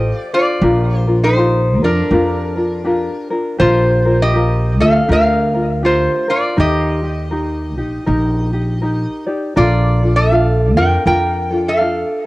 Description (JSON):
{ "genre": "Hawaiian", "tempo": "80 BPM", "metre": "4/4", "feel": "swing 61% on 8ths", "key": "Bb major", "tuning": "A4 = 440 Hz", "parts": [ { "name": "metal-body resonator slide guitar", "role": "melody", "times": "0.0-12.2 s", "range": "D4 to G5", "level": "-16 LUFS", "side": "equal", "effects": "cassette tape, analog delay" }, { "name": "tenor ukulele", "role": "accompaniment", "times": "0.0-12.3 s", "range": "D4 to D5", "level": "-19 LUFS", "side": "left 1 dB", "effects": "cassette tape" }, { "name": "upright bass", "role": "bass", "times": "0.0-12.0 s", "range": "A1 to F2", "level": "-16 LUFS", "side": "equal", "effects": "none" } ], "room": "light reverb, studio ambience", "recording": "home recording on cassette", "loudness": "-13 LUFS", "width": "side -19 dB against mid", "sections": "0.0-12.3 A section", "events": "none", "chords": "0.0 Dm7; 0.6 Bb6; 6.6 Eb; 9.6 Bbmaj7" }